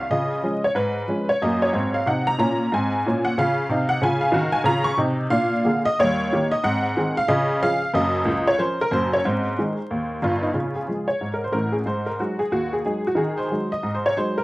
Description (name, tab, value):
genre	jazz, stride piano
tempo	184 BPM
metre	4/4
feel	swing 62% on 8ths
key	Db major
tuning	A4 = 440 Hz
part	honky-tonk upright piano	solo	0.0-14.4 s	Gb1 to Db6	-20 LUFS	equal	none
room	light reverb, studio reverb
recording	dry, close 1970s-style studio recording, vinyl crackle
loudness	-20 LUFS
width	side -20 dB against mid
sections	0.1-10.6 A section; 10.6-14.4 B section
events	none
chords	0.1 Db7; 1.4 Gb; 2.7 Ab69; 4.0 Db; 5.3 Bb7; 6.0 Eb7; 6.6 Ab7; 7.3 Db; 7.9 Gbmaj7; 9.2 Ab; 10.6 Db; 11.9 Ab5; 13.2 Ab7/Eb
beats	| 0.11 0.44 0.76 1.09 | 1.42 1.74 2.07 2.39 | 2.72 3.04 3.37 3.70 | 4.02 4.35 4.68 5.00 | 5.33 5.66 5.98 6.31 | 6.63 6.96 7.29 7.61 | 7.94 8.27 8.59 8.92 | 9.24 9.57 9.90 10.22 | 10.55 10.88 11.21 11.53 | 11.86 12.19 12.52 12.85 | 13.17 13.50 13.83 14.16